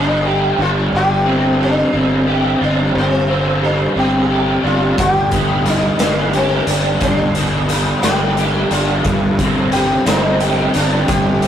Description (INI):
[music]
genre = psychedelic rock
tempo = 59 BPM (dotted quarters)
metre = 6/8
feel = straight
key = unclear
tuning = A4 = 440 Hz
[part]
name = sitar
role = melody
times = 0.0-11.5 s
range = C4 to G4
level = -20 LUFS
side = left 2 dB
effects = none
[part]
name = raw garage guitar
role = riff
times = 0.0-11.5 s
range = G2 to G4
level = -17 LUFS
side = right 1 dB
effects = overdrive, rotary speaker
[part]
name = fuzz fingered electric bass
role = bass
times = 0.0-11.5 s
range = G1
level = -19 LUFS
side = equal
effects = overdrive
[part]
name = hand-pumped harmonium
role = drone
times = 0.0-11.5 s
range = G2 to G3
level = -30 LUFS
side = equal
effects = none
[part]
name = raw garage drum kit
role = drums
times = 5.0-11.5 s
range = hi-hat, kick drum, snare drum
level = -20 LUFS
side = left 1 dB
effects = none
[sound]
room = moderate stone room reverb, RT60 1.0 s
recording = rough rehearsal-room recording, warm saturation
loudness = -13 LUFS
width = side -9 dB against mid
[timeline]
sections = 0.0-11.5 A section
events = none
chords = 0.0 G; 0.9 Csus2/G; 5.0 G; 9.0 Csus2/G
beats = | 0.92 1.93 | 2.95 3.96 | 4.98 5.99 | 7.01 8.03 | 9.04 10.06 | 11.08